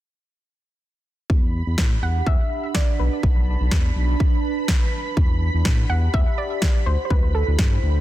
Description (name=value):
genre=deep house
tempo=124 BPM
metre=4/4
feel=swing 54% on 16ths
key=E minor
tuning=A4 = 440 Hz
part: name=smooth synth bass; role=bass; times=1.3-8.0 s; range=B1 to A2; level=-21 LUFS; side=equal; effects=none
part: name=electronic kick drum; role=drums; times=1.3-7.7 s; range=none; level=-20 LUFS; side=equal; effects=studio reverb
part: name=analog string pad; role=texture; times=1.3-8.0 s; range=B5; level=-34 LUFS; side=right 3 dB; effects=ensemble chorus, sidechain pumping
part: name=warbly tape-like pad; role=texture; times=2.1-8.0 s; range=D4 to A5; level=-30 LUFS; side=right 4 dB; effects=chorus, built-in reverb, phaser, sidechain pumping
part: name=electronic snare drum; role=drums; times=1.8-7.7 s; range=none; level=-27 LUFS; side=equal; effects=studio reverb
part: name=soft round pluck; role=melody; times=2.0-8.0 s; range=A4 to F#5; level=-29 LUFS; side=right 1 dB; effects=chorus, digital delay
room=little or no reverb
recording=dense, heavily limited modern master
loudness=-18 LUFS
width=side -14 dB against mid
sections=1.3-8.0 A section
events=none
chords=1.3 Em11; 3.0 Bm7; 5.2 Em11; 6.9 D9sus4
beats=| 1.30 1.78 2.27 2.75 | 3.23 3.72 4.20 4.69 | 5.17 5.65 6.14 6.62 | 7.11 7.59